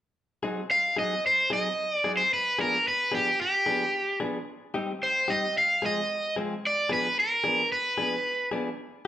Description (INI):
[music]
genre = blues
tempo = 111 BPM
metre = 4/4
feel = straight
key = unclear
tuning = A4 = 440 Hz
[part]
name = direct-recorded clean electric guitar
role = stabs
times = 0.4-9.1 s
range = F3 to Ab4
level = -32 LUFS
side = left 2 dB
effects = spring reverb
[part]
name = cranked stack guitar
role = melody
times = 0.7-8.5 s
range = G4 to F5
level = -24 LUFS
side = equal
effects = overdrive
[sound]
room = moderate large studio reverb, RT60 0.8 s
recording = band playing live in one room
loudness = -24 LUFS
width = side -12 dB against mid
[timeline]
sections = 0.2-8.8 A section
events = none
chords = 0.2 Ab7; 2.3 G7b9; 4.5 Cm; 5.6 Fm; 6.6 Fdim7